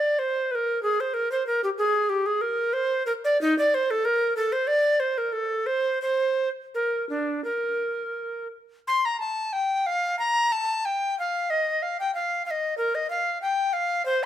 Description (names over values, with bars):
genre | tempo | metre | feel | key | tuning
classical, baroque-style fantasia for unaccompanied recorder | 82-98 BPM | 4/4 | rubato | Bb major from 3.4 s | A4 = 441 Hz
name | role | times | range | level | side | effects
tenor recorder | solo | 0.0-14.3 s | D4 to C6 | -23 LUFS | equal | none
room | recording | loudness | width
moderate large studio reverb, RT60 1.3 s | minimal, uncompressed stereo recording | -23 LUFS | side -11 dB against mid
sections
0.0-8.9 A section; 8.9-14.3 B section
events
none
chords
none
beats
0.21 | 0.85 1.49 2.11 2.73 | 3.39 4.04 4.68 5.34 | 6.03 6.75 7.46 8.15 | 8.85 9.52 10.18 10.84 | 11.49 12.13 12.77 13.41 | 14.05